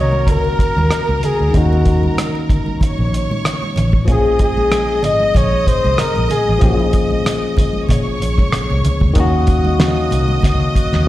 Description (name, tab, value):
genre	lush 1970s-style soul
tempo	94 BPM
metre	4/4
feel	swing 54% on 16ths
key	Eb minor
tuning	A4 = 440 Hz
part	breathy flugelhorn	melody	0.0-6.9 s	Gb4 to Eb5	-18 LUFS	left 1 dB	plate reverb, slapback echo
part	clear studio violin section	second line	0.0-11.1 s	Bb4 to Eb6	-25 LUFS	right 1 dB	plate reverb, slapback echo, tape echo
part	barky tine electric piano	accompaniment	0.0-11.1 s	Eb3 to Ab4	-21 LUFS	left 3 dB	overdrive, plate reverb, slapback echo
part	vintage muted fingered electric bass	bass	0.0-11.0 s	Ab1 to Bb2	-17 LUFS	equal	none
part	congas	percussion	0.1-11.1 s	none	-26 LUFS	right 4 dB	slapback echo
part	cloth-damped thuddy drum kit	drums	0.3-11.0 s	hi-hat, kick drum, rim click, snare drum	-16 LUFS	equal	none
part	percussive tonewheel organ	sustained chords	9.2-11.1 s	Eb3 to Gb4	-28 LUFS	right 1 dB	slow rotary speaker, plate reverb
room	light reverb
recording	live gig heard through the venue's PA, recital hall reverb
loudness	-13 LUFS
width	side -15 dB against mid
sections	0.0-11.1 A section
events	none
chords	0.0 Ebm7; 4.1 Bbm7; 9.2 Ebm7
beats	0.27 0.91 | 1.54 2.18 2.81 3.45 | 4.08 4.72 5.35 5.99 | 6.62 7.26 7.89 8.53 | 9.16 9.80 10.43 11.07